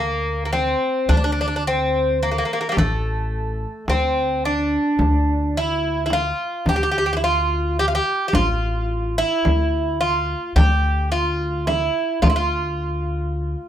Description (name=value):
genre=Turkish makam ensemble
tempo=108 BPM (eighths)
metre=10/8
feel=straight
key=D makam nihavent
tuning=A4 = 437 Hz
part: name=Greek bouzouki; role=melody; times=0.0-13.7 s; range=G3 to G4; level=-20 LUFS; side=right 1 dB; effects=none
part: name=upright bass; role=bass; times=0.0-13.5 s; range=A1 to D2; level=-23 LUFS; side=equal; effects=none
part: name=frame drum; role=percussion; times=0.5-12.5 s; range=none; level=-22 LUFS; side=equal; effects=none
room=moderate studio reverb, RT60 0.6 s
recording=none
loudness=-18 LUFS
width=side -10 dB against mid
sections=0.0-13.7 A section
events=none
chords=none